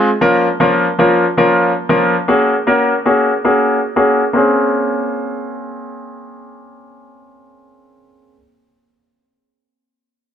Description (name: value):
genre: pop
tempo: 116 BPM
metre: 4/4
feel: straight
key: Bb minor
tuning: A4 = 445 Hz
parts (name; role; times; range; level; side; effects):
- clear concert grand piano; solo; 0.0-8.4 s; F3 to Bb4; -12 LUFS; left 1 dB; low-pass filter
room: light reverb, studio reverb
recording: none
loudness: -12 LUFS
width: side -9 dB against mid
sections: 0.0-4.4 A section; 4.4-8.5 B section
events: filter sweep on grand piano 0.0-4.4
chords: 0.2 Bbm/F; 2.3 Gbadd9; 4.4 Bbm9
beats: | 0.21 0.73 1.25 1.77 | 2.28 2.80 3.32 3.83 | 4.35 4.87 5.39 5.90 | 6.42 6.94 7.46 7.97